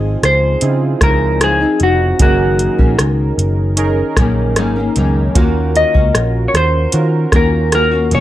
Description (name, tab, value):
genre	indie pop, bedroom pop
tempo	76 BPM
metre	4/4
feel	straight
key	unclear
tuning	A4 = 440 Hz
part	semi-hollow electric guitar	melody	0.0-8.2 s	Gb4 to Eb5	-16 LUFS	left 1 dB	analog chorus, slapback echo, plate reverb
part	nylon-string guitar	accompaniment	0.0-8.2 s	Gb2 to Gb4	-20 LUFS	left 4 dB	analog chorus, warbly pitch drift
part	warbly lo-fi synth keys	accompaniment	0.0-8.2 s	C4 to Bb4	-21 LUFS	right 4 dB	chorus, plate reverb
part	vintage muted picked electric bass	bass	0.0-8.2 s	F1 to Eb3	-16 LUFS	equal	none
part	soft vintage rhythm box	drums	0.2-8.2 s	hi-hat, kick drum, rim click	-14 LUFS	equal	none
room	light reverb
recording	none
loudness	-11 LUFS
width	side -13 dB against mid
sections	0.0-8.2 A section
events	none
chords	0.0 Dbmaj9; 2.2 Gb6; 5.4 Ebm7